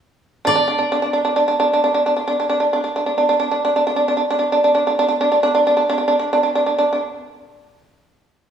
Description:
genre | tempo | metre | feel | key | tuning
japanese traditional, Japanese chamber music | 35 BPM | 4/4 | rubato | unclear | A4 = 440 Hz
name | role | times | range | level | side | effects
shamisen | second line | 0.4-7.0 s | D4 | -16 LUFS | right 1 dB | none
koto | melody | 0.5-4.6 s | D5 | -23 LUFS | left 3 dB | none
room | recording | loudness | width
wet recital hall reverb, RT60 1.6 s | recorded in a church or concert hall | -15 LUFS | side -8 dB against mid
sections
0.5-7.4 A section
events
none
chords
none

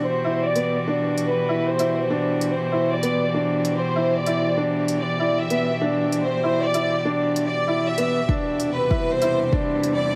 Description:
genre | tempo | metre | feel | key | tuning
piano and strings electronica | 97 BPM | 4/4 | straight | E minor | A4 = 440 Hz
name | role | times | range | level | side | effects
clear studio violin section | melody | 0.0-10.2 s | B4 to E5 | -26 LUFS | equal | low-pass filter
rich string quartet | sustained chords | 0.0-10.2 s | E2 to G4 | -29 LUFS | equal | sidechain pumping
clear upright piano | riff | 0.2-9.9 s | B3 to E4 | -26 LUFS | equal | none
electronic hi-hat | drums | 0.6-10.0 s | none | -36 LUFS | equal | studio reverb
electronic kick drum | drums | 8.3-9.7 s | none | -26 LUFS | equal | studio reverb
room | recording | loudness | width
moderate huge ambient reverb, RT60 7.5 s | none | -22 LUFS | mono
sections
0.0-10.2 A section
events
build-up 0.0-10.2; filter sweep on violin section 0.0-10.2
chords
0.0 Em7; 8.3 Cmaj7/E

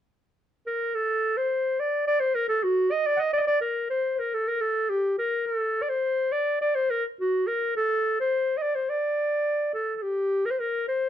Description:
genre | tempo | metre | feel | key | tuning
klezmer | 106 BPM | 2/4 | straight | D phrygian dominant | A4 = 441 Hz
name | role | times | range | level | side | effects
warm clarinet | solo | 0.7-11.1 s | F#4 to F#5 | -23 LUFS | equal | none
room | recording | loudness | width
moderate studio reverb, RT60 0.7 s | dark, warm production | -23 LUFS | side -10 dB against mid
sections
0.9-10.0 A section; 10.0-11.1 A section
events
none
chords
none

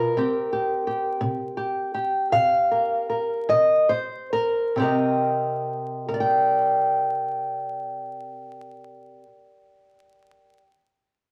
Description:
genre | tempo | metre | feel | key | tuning
acoustic country blues, solo or duo | 45-59 BPM (dotted quarters) | 12/8 | straight | C minor | A4 = 438 Hz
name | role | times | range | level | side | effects
fingerpicked old ladder-braced acoustic guitar | solo | 0.0-10.7 s | B2 to G5 | -24 LUFS | equal | none
room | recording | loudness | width
wet large studio reverb, RT60 0.8 s | vinyl crackle | -23 LUFS | mono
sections
0.0-4.8 A section; 4.8-10.1 B section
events
slowing down 0.0-4.8; steel-string acoustic guitar solo 0.0-4.8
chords
0.2 C5; 4.8 Cm9

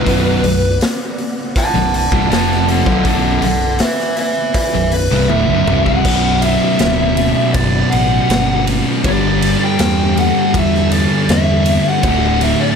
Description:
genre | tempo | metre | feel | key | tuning
stoner and doom metal | 80 BPM | 4/4 | straight | B minor | A4 = 440 Hz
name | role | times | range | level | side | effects
fuzz lead guitar | melody | 0.0-12.8 s | A4 to A5 | -18 LUFS | equal | distortion, analog delay
soft string machine | sustained chords | 0.0-12.8 s | D3 to F#5 | -29 LUFS | right 1 dB | none
biting overdriven guitar | riff | 0.0-12.8 s | B1 to G3 | -22 LUFS | right 1 dB | none
thick fuzz guitar | riff | 0.0-12.8 s | B1 to G3 | -19 LUFS | left 10 dB | distortion
thick fuzz guitar | riff | 0.0-12.8 s | B1 to G3 | -20 LUFS | right 10 dB | distortion
overdriven fingered electric bass | bass | 0.0-12.5 s | B0 to E2 | -19 LUFS | equal | none
raw garage drum kit | drums | 0.1-12.6 s | crash cymbal, hi-hat, kick drum, ride cymbal, snare drum, toms | -19 LUFS | equal | none
room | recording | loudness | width
small room ambience | none | -12 LUFS | side -6 dB against mid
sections
0.0-6.1 A section; 6.1-12.8 B section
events
lead electric guitar solo 0.0-6.1; drum fill 5.3-6.1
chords
0.0 Bm; 9.0 G5; 12.0 D

